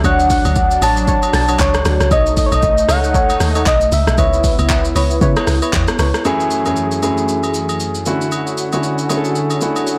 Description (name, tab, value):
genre	amapiano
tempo	116 BPM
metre	4/4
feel	swing 58% on 16ths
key	F# minor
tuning	A4 = 440 Hz
part	soft struck synth lead	melody	0.0-5.7 s	C#5 to A5	-19 LUFS	equal	chorus, digital delay
part	warm analog pad	sustained chords	0.0-10.0 s	F#2 to G#4	-26 LUFS	equal	chorus, sidechain pumping
part	deep mellow chord stab	stabs	0.0-6.2 s	D4 to C#5	-24 LUFS	equal	chorus, digital delay
part	deep log drum bass	bass	0.0-6.1 s	A1 to C#3	-20 LUFS	equal	none
part	deep house drum kit	drums	0.0-10.0 s	handclaps, hi-hat, kick drum, rim click, shaker	-22 LUFS	equal	none
part	agogo bells	percussion	0.0-9.9 s	none	-30 LUFS	equal	none
part	warm grand piano	accompaniment	6.2-10.0 s	F#2 to A4	-19 LUFS	equal	none
room	light reverb, digital ambience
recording	blown-out, overdriven recording, overdrive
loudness	-15 LUFS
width	mono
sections	0.0-6.2 A section; 6.2-10.0 B section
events	drop 0.0-6.2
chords	0.0 Dmaj7; 2.1 B9; 4.2 C#m7; 6.2 F#m9; 8.1 Dmaj7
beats	| 0.04 0.56 1.08 1.59 | 2.11 2.63 3.15 3.66 | 4.18 4.70 5.21 5.73 | 6.25 6.77 7.28 7.80 | 8.32 8.84 9.35 9.87